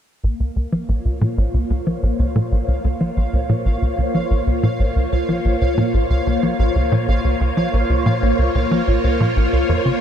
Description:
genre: ambient, sequencer-driven space music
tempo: 92 BPM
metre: 4/4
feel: straight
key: Bb minor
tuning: A4 = 439 Hz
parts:
  - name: phased string machine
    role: sustained chords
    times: 0.2-10.0 s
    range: Bb3 to Db5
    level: -21 LUFS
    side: equal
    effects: ensemble chorus, phaser
  - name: tight sequencer bass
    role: riff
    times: 0.2-9.9 s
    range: Bb1 to F3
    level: -18 LUFS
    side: equal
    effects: analog chorus, analog delay
  - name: pulsing gated texture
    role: texture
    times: 1.1-10.0 s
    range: F5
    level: -31 LUFS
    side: right 2 dB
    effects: chorus, built-in reverb
room: moderate huge ambient reverb, RT60 8.2 s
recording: dark, warm production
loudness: -16 LUFS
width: side -9 dB against mid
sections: 0.2-10.0 A section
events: fade-in on synth texture 0.2-10.0; filter sweep on analog synth bass 0.2-10.0; filter sweep on string machine 0.2-10.0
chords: 0.2 Bbm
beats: | 0.23 0.89 1.54 2.19 | 2.84 3.49 4.15 4.80 | 5.45 6.10 6.75 7.41 | 8.06 8.71 9.36

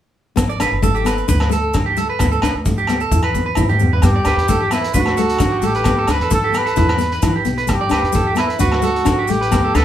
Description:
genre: highlife guitar band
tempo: 131 BPM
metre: 4/4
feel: straight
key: G major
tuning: A4 = 440 Hz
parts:
  - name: nylon-string guitar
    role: accompaniment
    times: 0.4-9.8 s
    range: A3 to E4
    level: -22 LUFS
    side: left 4 dB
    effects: none
  - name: upright bass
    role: bass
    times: 0.4-9.8 s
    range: G1 to E3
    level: -22 LUFS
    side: equal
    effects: none
  - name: crunchy breakbeat drum kit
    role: drums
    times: 0.4-9.8 s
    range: hi-hat, kick drum, rim click, toms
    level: -20 LUFS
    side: equal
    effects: none
  - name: agogo bells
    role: percussion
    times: 0.4-9.8 s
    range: none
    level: -26 LUFS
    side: left 1 dB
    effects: none
  - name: maracas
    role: percussion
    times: 0.4-9.8 s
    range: none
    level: -33 LUFS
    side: left 5 dB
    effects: none
  - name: electric guitar at the edge of break-up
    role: arpeggios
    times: 0.5-9.8 s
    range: G4 to D5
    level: -22 LUFS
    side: right 4 dB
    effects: none
  - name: warm trumpet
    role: melody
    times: 4.0-9.8 s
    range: E4 to B4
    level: -19 LUFS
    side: right 1 dB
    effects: none
room: wet studio reverb, RT60 0.6 s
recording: band playing live in one room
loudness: -14 LUFS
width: side -11 dB against mid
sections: 0.4-4.0 A section; 4.0-9.8 B section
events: drum fill 3.1-4.0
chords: 0.4 Gadd9; 1.3 Gadd9/D; 3.1 Em; 4.0 Gadd9; 4.9 D; 5.9 Gadd9/D; 6.8 Em; 7.7 Gadd9; 8.6 D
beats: | 0.38 0.83 1.29 1.75 | 2.20 2.66 3.12 3.57 | 4.03 4.49 4.95 5.40 | 5.86 6.32 6.77 7.23 | 7.69 8.15 8.61 9.06 | 9.52

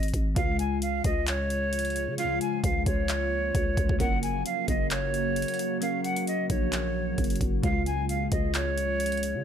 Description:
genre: hip hop, trap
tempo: 132 BPM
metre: 4/4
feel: half-time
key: Db major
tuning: A4 = 440 Hz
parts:
  - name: silver concert flute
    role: melody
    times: 0.0-9.4 s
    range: Db5 to Ab5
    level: -30 LUFS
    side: right 1 dB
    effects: ping-pong delay
  - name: growling 808-style bass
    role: bass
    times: 0.0-9.4 s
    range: Gb1 to Db3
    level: -30 LUFS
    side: equal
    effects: none
  - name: trap drum kit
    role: drums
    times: 0.0-9.3 s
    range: handclaps, hi-hat, kick drum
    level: -30 LUFS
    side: equal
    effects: none
  - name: glassy digital keys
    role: accompaniment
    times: 0.4-9.4 s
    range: Db3 to Bb4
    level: -34 LUFS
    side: left 3 dB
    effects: chorus
  - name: deep dark ambient pad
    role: sustained chords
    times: 1.4-9.4 s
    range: Db3 to Gb4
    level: -34 LUFS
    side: right 2 dB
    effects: chorus, built-in reverb
room: digital ambience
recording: none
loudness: -25 LUFS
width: side -8 dB against mid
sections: 0.4-9.4 A section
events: none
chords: 0.4 Db; 4.0 Gb; 7.6 Db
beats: | 0.36 0.82 1.27 1.73 | 2.18 2.64 3.09 3.54 | 4.00 4.45 4.91 5.36 | 5.82 6.27 6.73 7.18 | 7.64 8.09 8.54 9.00

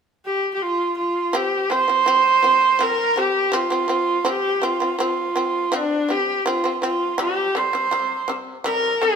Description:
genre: mongolian traditional, Mongolian folk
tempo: 82 BPM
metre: 4/4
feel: straight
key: F zhi mode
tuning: A4 = 439 Hz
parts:
  - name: bright horsehead fiddle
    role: melody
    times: 0.3-9.2 s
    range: D4 to C5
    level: -18 LUFS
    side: right 2 dB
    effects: none
  - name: shamisen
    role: arpeggios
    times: 1.3-9.2 s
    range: C3 to C4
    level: -26 LUFS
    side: equal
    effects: none
room: moderate stone room reverb, RT60 1.4 s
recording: band playing live in one room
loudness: -18 LUFS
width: side -6 dB against mid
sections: 0.0-1.3 A section; 1.3-9.2 B section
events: none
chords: 0.0 N.C.; 1.3 F5; 7.2 C5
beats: 0.61 | 1.34 2.07 2.81 3.54 | 4.27 5.00 5.73 6.46 | 7.19 7.92 8.65

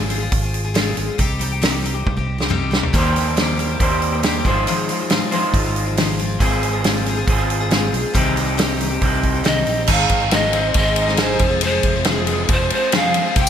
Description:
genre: folk rock and heartland rock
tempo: 138 BPM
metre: 4/4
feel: straight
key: F minor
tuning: A4 = 442 Hz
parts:
  - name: picked twelve-string acoustic guitar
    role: accompaniment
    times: 0.0-13.5 s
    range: F2 to Ab4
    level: -24 LUFS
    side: left 6 dB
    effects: none
  - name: fingered electric bass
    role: bass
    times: 0.0-13.5 s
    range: F1 to Eb2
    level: -23 LUFS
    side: equal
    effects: none
  - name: natural country drum kit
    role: drums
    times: 0.1-13.5 s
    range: crash cymbal, hi-hat, kick drum, ride cymbal, snare drum, toms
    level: -20 LUFS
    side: right 1 dB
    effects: gated reverb
  - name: electric guitar through a small old amp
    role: riff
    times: 2.9-13.5 s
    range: F2 to C5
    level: -22 LUFS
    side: right 2 dB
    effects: none
  - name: breathy mellow pan flute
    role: melody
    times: 9.5-13.5 s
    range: Ab4 to G5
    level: -20 LUFS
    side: right 1 dB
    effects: ping-pong delay
  - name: tonewheel organ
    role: sustained chords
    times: 9.9-13.5 s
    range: C4 to C5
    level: -34 LUFS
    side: right 2 dB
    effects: none
room: light reverb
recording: bright 1980s-style digital production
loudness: -16 LUFS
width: side -9 dB against mid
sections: 0.0-9.9 A section; 9.9-13.5 B section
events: drum fill 2.1-2.9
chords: 0.0 Fm/Ab; 1.2 Cm; 2.9 Eb6; 4.5 Ab6; 6.4 Fm/Ab; 8.2 Cm; 9.9 Ab; 11.4 Fm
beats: 0.33 0.76 | 1.20 1.63 2.07 2.50 | 2.94 3.37 3.81 4.24 | 4.67 5.11 5.54 5.98 | 6.41 6.85 7.28 7.72 | 8.15 8.59 9.02 9.46 | 9.89 10.33 10.76 11.20 | 11.63 12.07 12.50 12.94 | 13.37

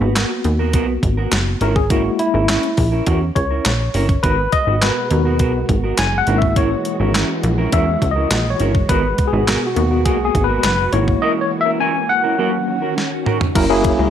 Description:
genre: early-eighties boogie funk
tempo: 103 BPM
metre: 4/4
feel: straight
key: unclear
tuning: A4 = 440 Hz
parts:
  - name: tine electric piano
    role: accompaniment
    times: 0.0-14.1 s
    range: F#3 to G#5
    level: -19 LUFS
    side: left 3 dB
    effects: fast stereo tremolo
  - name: mellow electric guitar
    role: riff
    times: 0.0-14.1 s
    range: B3 to B4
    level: -24 LUFS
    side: right 6 dB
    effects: lush chorus
  - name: plucky analog bass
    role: bass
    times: 0.0-14.1 s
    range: F#1 to E2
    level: -19 LUFS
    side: equal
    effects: none
  - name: crisp 8-bit digital drum machine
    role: drums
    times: 0.2-14.0 s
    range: crash cymbal, handclaps, hi-hat, kick drum, snare drum, toms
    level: -20 LUFS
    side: equal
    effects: none
  - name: soft string machine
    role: sustained chords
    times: 4.2-14.1 s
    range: B2 to F#4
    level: -26 LUFS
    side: equal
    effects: ensemble chorus
room: light reverb, digital ambience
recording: faint mains hum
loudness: -15 LUFS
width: side -9 dB against mid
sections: 0.0-13.6 A section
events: tine electric piano solo 0.0-13.6; drum fill 13.0-13.6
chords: 0.0 G#m9; 1.6 F#9; 4.2 G#m9; 6.3 F#7/G#; 8.9 G#m9; 10.9 F#7/G#; 12.4 D#m7; 13.6 F#7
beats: 0.16 0.74 1.32 | 1.90 2.49 3.07 3.65 | 4.23 4.82 5.40 5.98 | 6.56 7.15 7.73 8.31 | 8.89 9.48 10.06 10.64 | 11.22 11.81 12.39 12.97 | 13.55

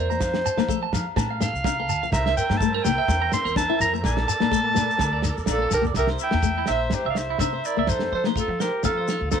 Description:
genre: highlife guitar band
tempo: 125 BPM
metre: 4/4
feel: swing 54% on 16ths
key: C mixolydian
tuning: A4 = 440 Hz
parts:
  - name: clear clarinet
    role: melody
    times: 0.0-9.4 s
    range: A4 to C6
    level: -25 LUFS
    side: right 2 dB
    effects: none
  - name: clean electric guitar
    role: arpeggios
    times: 0.0-9.4 s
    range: E4 to Bb5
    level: -29 LUFS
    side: right 11 dB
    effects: slapback echo
  - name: upright bass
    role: bass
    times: 0.0-9.4 s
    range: Bb1 to F3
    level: -28 LUFS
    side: equal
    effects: none
  - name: fingerpicked steel-string acoustic guitar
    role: accompaniment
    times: 0.1-9.4 s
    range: F3 to E4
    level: -28 LUFS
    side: left 16 dB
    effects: none
  - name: shekere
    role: percussion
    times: 0.1-9.4 s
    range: none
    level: -31 LUFS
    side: left 6 dB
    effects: none
  - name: warm soul drum kit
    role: drums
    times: 0.2-9.4 s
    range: kick drum, snare drum, toms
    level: -28 LUFS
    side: right 3 dB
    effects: none
  - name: agogo bells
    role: percussion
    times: 0.2-9.4 s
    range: none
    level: -35 LUFS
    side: left 17 dB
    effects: none
  - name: musette accordion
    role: sustained chords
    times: 2.1-5.9 s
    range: A4 to E5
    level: -35 LUFS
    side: right 3 dB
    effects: none
  - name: warm trumpet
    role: second line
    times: 5.5-9.4 s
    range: F4 to E5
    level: -34 LUFS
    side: left 11 dB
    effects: none
room: moderate spring reverb, RT60 1.3 s, small room reverb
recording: 1960s-style stereo with parts hard left and right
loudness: -20 LUFS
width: side -7 dB against mid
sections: 0.0-6.0 A section; 6.0-9.4 B section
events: drum fill 5.7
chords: 0.2 F; 2.1 C7; 4.0 Bbmaj7; 6.0 C7; 7.9 F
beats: | 0.21 0.69 1.17 1.65 | 2.13 2.61 3.09 3.57 | 4.04 4.53 5.00 5.48 | 5.96 6.44 6.92 7.40 | 7.88 8.36 8.84 9.32

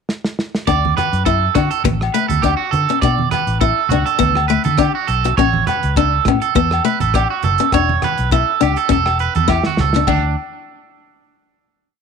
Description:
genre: highlife guitar band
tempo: 102 BPM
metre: 4/4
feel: swing 54% on 16ths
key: D major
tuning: A4 = 440 Hz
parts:
  - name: damped 70s drum kit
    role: drums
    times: 0.1-10.2 s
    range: crash cymbal, hi-hat, kick drum, rim click, snare drum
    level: -22 LUFS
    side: equal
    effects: none
  - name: picked steel-string acoustic guitar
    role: accompaniment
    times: 0.7-10.3 s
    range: A3 to F#4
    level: -19 LUFS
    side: left 15 dB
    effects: none
  - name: electric guitar at the edge of break-up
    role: arpeggios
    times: 0.7-10.4 s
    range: D4 to D5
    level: -18 LUFS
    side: right 13 dB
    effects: tape echo
  - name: fingered electric bass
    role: bass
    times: 0.7-10.3 s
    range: E1 to D3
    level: -19 LUFS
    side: equal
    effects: none
  - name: agogo bells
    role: percussion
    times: 0.7-10.2 s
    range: none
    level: -26 LUFS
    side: left 11 dB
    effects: none
  - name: congas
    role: percussion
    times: 0.8-10.4 s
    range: none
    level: -25 LUFS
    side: right 8 dB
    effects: none
room: small room ambience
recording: 1960s-style stereo with parts hard left and right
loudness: -14 LUFS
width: side -6 dB against mid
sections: 0.0-0.7 pickup bar; 0.7-10.1 groove; 10.1-12.0 final note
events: drum fill 0.1-0.7, 9.5-10.1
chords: 0.0 N.C.; 0.7 D; 5.4 Aadd9; 7.7 Em; 10.1 N.C.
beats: 0.09 | 0.68 1.26 1.85 2.44 | 3.02 3.61 4.20 4.79 | 5.38 5.97 6.56 7.14 | 7.73 8.32 8.91 9.49 | 10.08

